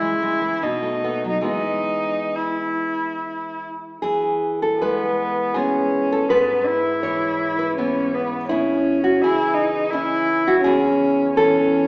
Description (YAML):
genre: romantic duo for cello and classical guitar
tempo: 69-86 BPM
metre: 3/4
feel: rubato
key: E major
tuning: A4 = 440 Hz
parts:
  - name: rich cello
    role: melody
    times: 0.0-11.9 s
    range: B3 to E4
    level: -21 LUFS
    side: equal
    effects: none
  - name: nylon-string guitar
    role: accompaniment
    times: 0.0-11.9 s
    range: E2 to C#5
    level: -20 LUFS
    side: equal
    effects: none
room: wet recital hall reverb, RT60 1.6 s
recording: recorded in a church or concert hall, small speaker sound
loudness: -18 LUFS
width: side -28 dB against mid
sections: 0.0-4.0 A section; 4.0-11.9 B section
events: none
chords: 0.0 C#m; 0.6 B7; 1.5 E; 6.3 E/G#; 8.5 C#m; 10.6 C#m/E